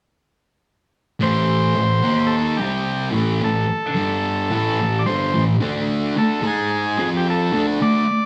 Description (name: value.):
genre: rock.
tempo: 109 BPM.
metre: 4/4.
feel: straight.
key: A minor.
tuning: A4 = 440 Hz.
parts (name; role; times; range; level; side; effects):
overdriven combo organ; melody; 1.2-8.3 s; G4 to D5; -25 LUFS; equal; none.
thick fuzz guitar; riff; 1.2-8.0 s; G2 to G#4; -21 LUFS; equal; distortion.
room: wet large studio reverb, RT60 1.1 s.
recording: band playing live in one room.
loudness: -20 LUFS.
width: mono.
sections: 1.2-8.3 A section.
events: none.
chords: 1.2 Am; 2.0 D#5; 2.6 C5; 3.1 A5; 4.0 G5; 4.5 A5; 5.6 D5; 6.4 G#5; 7.0 F5; 7.5 D5.